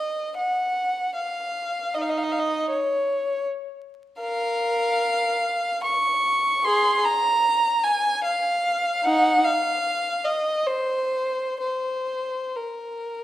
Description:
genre	classical, free, expressive piece for unaccompanied violin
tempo	62-81 BPM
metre	3/4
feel	rubato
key	Bb minor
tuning	A4 = 439 Hz
part	rich violin	solo	0.0-13.2 s	Eb4 to Db6	-21 LUFS	equal	none
room	moderate recital hall reverb, RT60 1.3 s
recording	dark, warm production, vinyl crackle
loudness	-21 LUFS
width	side -14 dB against mid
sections	0.0-13.2 A section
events	none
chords	none

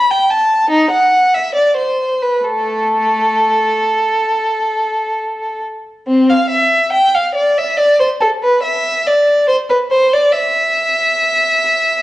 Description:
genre	classical, baroque-style suite movement for unaccompanied violin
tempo	65-74 BPM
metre	4/4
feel	rubato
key	A minor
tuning	A4 = 437 Hz
part	rich violin	solo	0.0-12.0 s	A3 to B5	-12 LUFS	equal	none
room	moderate recital hall reverb, RT60 1.3 s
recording	worn, warbling old tape, cassette tape, warbly pitch drift, nothing above 10.3 kHz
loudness	-12 LUFS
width	side -16 dB against mid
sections	0.0-6.1 A section; 6.1-12.0 A section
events	none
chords	none

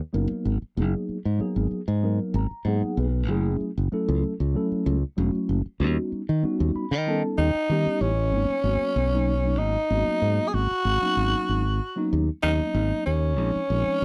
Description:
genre	electric jazz fusion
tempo	95 BPM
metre	4/4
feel	swing 54% on 16ths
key	G# phrygian, G# minor from 8.3 s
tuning	A4 = 440 Hz
part	mellow tine electric piano	accompaniment	0.1-14.0 s	E#3 to B5	-30 LUFS	equal	lush chorus
part	modern bright fingered electric bass	bass	0.1-14.0 s	E1 to D#3	-26 LUFS	equal	none
part	growling tenor saxophone	melody	7.4-14.0 s	C#4 to G#4	-28 LUFS	equal	slapback echo
room	little or no reverb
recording	dry, close 1970s-style studio recording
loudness	-25 LUFS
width	mono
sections	0.0-8.3 A section; 8.3-14.0 B section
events	tine electric piano fill 2.0-3.3, 6.4-8.3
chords	0.0 G#m9; 3.3 F#m9; 5.8 D#7alt; 8.3 G#m11; 13.4 A#m11

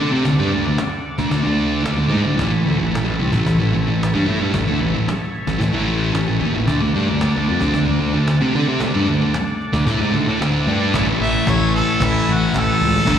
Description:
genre	garage rock duo or trio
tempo	112 BPM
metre	4/4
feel	straight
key	A mixolydian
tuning	A4 = 439 Hz
part	combo organ	sustained chords	0.0-13.2 s	D4 to D5	-28 LUFS	right 1 dB	lush chorus
part	thick fuzz guitar	riff	0.0-13.2 s	G2 to A4	-18 LUFS	equal	distortion, slapback echo
part	fuzz picked electric bass	bass	0.0-13.2 s	G1 to D3	-21 LUFS	equal	overdrive
part	cajon	drums	0.3-13.2 s	none	-27 LUFS	equal	slapback echo
part	clear harmonica	melody	11.2-13.2 s	E4 to E5	-20 LUFS	equal	overdrive
room	light reverb, small room ambience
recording	live gig heard through the venue's PA, recital hall reverb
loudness	-16 LUFS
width	side -9 dB against mid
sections	0.0-10.9 A section; 10.9-13.2 B section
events	kick and snare drop out 2.1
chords	0.0 D5; 2.4 A; 6.7 D5; 10.9 A

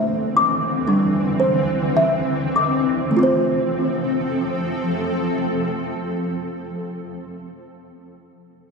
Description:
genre	children's music, lullaby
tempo	48-62 BPM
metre	4/4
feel	straight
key	F major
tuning	A4 = 441 Hz
part	kalimba	melody	0.0-6.9 s	G3 to D6	-19 LUFS	equal	analog delay
part	granular cloud pad	sustained chords	0.0-6.8 s	D3 to A4	-22 LUFS	equal	built-in reverb, analog chorus
room	wet plate reverb, RT60 2.7 s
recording	dreamy mix soaked in reverb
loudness	-18 LUFS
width	side -4 dB against mid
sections	0.0-3.2 A section; 3.2-8.1 B section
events	slowing down 0.0-3.2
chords	0.0 Cadd9; 3.2 F

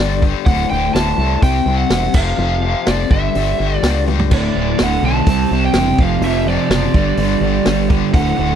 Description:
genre	classic rock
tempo	125 BPM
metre	4/4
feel	straight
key	unclear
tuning	A4 = 438 Hz
part	lead guitar through a small cranked amp	melody	0.0-8.6 s	D5 to A5	-21 LUFS	right 2 dB	overdrive, slapback echo
part	raw garage guitar	riff	0.0-8.6 s	D2 to C4	-20 LUFS	left 17 dB	overdrive, harmonic tremolo
part	growling fingered electric bass	bass	0.0-8.6 s	D1 to C#2	-19 LUFS	equal	overdrive
part	vintage drum kit	drums	0.2-8.3 s	crash cymbal, hi-hat, kick drum, snare drum, toms	-17 LUFS	equal	none
part	crunchy overdriven guitar	riff	4.3-8.6 s	D2 to C4	-18 LUFS	right 14 dB	none
room	little or no reverb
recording	dry, close 1970s-style studio recording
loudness	-13 LUFS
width	side -9 dB against mid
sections	0.0-8.6 A section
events	drum fill 4.1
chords	0.5 D5; 1.4 C; 2.1 F5; 3.1 G5; 4.3 D5; 5.3 C; 6.0 F5; 6.9 G5

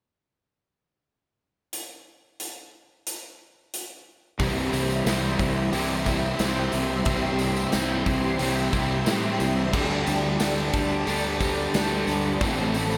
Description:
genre	rock, shoegaze and dream pop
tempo	90 BPM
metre	4/4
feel	straight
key	C major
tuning	A4 = 440 Hz
part	big rock drum kit	drums	1.7-12.9 s	crash cymbal, hi-hat, kick drum, snare drum	-33 LUFS	equal	none
part	phased string machine	sustained chords	4.4-13.0 s	G4 to C6	-34 LUFS	equal	ensemble chorus, phaser
part	direct-recorded clean electric guitar	arpeggios	4.4-13.0 s	G3 to A4	-36 LUFS	equal	none
part	overdriven semi-hollow guitar	riff	4.4-13.0 s	A2 to A4	-29 LUFS	equal	analog chorus
part	overdriven semi-hollow guitar	riff	4.4-13.0 s	A2 to A4	-32 LUFS	equal	reverse reverb
part	fuzz fingered electric bass	bass	4.4-13.0 s	A1 to A2	-33 LUFS	equal	overdrive
part	tambourine	percussion	4.4-13.0 s	none	-43 LUFS	equal	none
room	moderate plate reverb, RT60 3.0 s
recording	dreamy mix soaked in reverb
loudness	-25 LUFS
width	mono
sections	1.7-4.4 A section; 4.4-13.0 B section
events	none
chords	1.7 N.C.; 4.4 C; 9.7 Dsus4; 12.4 Amadd9

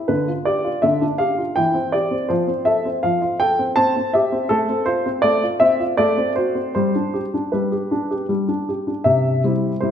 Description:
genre	classical-period piano sonatina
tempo	81 BPM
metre	3/4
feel	straight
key	C major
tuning	A4 = 440 Hz
part	warm baby grand piano	solo	0.0-9.9 s	C3 to A5	-17 LUFS	equal	none
room	wet recital hall reverb, RT60 1.7 s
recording	none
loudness	-17 LUFS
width	side -8 dB against mid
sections	0.0-9.1 A section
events	none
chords	0.1 G5/D; 1.6 C/E; 2.3 F; 3.8 C; 4.5 F/A; 6.0 D7/A; 6.7 G; 9.1 C

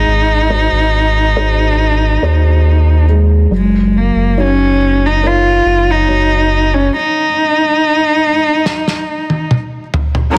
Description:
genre	pop ballad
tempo	70 BPM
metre	4/4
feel	straight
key	Eb minor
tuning	A4 = 440 Hz
part	dark cello	melody	0.0-9.5 s	Ab3 to F4	-15 LUFS	equal	none
part	felt-muted upright piano	accompaniment	0.0-7.0 s	Gb3 to Db5	-22 LUFS	equal	none
part	sub bass with octave	bass	0.0-6.9 s	Gb1 to Eb2	-15 LUFS	equal	none
part	loose indie drum kit	drums	8.7-10.4 s	snare drum, toms	-17 LUFS	equal	soft clipping on kick
room	light reverb, studio reverb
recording	dense, heavily limited modern master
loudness	-12 LUFS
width	mono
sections	0.0-10.4 A section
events	drum fill 8.7-10.4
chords	0.0 Ab7; 3.5 Ebm7/Gb; 6.9 N.C.

